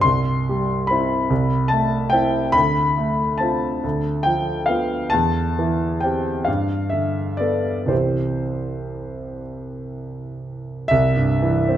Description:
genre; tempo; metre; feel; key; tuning
classical, romantic nocturne for solo piano; 37-50 BPM (dotted quarters); 12/8; rubato; C major; A4 = 440 Hz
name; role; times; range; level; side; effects
warm grand piano; solo; 0.0-11.8 s; C2 to C6; -19 LUFS; equal; none
room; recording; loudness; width
moderate recital hall reverb, RT60 1.7 s; close, detailed microphones; -18 LUFS; side -11 dB against mid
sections
0.0-10.9 A section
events
none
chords
0.0 C; 1.3 Am/C; 2.6 Dm7; 3.8 Bdim/D; 5.1 C/E; 6.5 Gadd9; 7.9 C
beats
| 0.03 1.30 2.55 3.83 | 5.13 6.47 7.90 9.43 | 10.92

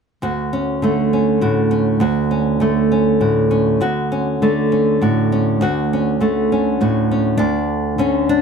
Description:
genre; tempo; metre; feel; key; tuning
folk, solo fingerstyle acoustic guitar; 67 BPM (dotted quarters); 6/8; straight; D major; A4 = 440 Hz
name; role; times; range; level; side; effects
nylon-string guitar; solo; 0.2-8.4 s; D2 to F#4; -15 LUFS; right 1 dB; slapback echo
room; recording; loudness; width
little or no reverb; close, detailed microphones; -15 LUFS; side -6 dB against mid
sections
0.2-7.4 A section; 7.4-8.4 B section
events
none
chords
0.2 Dmaj7; 7.4 Dmaj7(no3)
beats
| 0.22 1.12 | 2.02 2.92 | 3.81 4.71 | 5.61 6.50 | 7.40 8.29

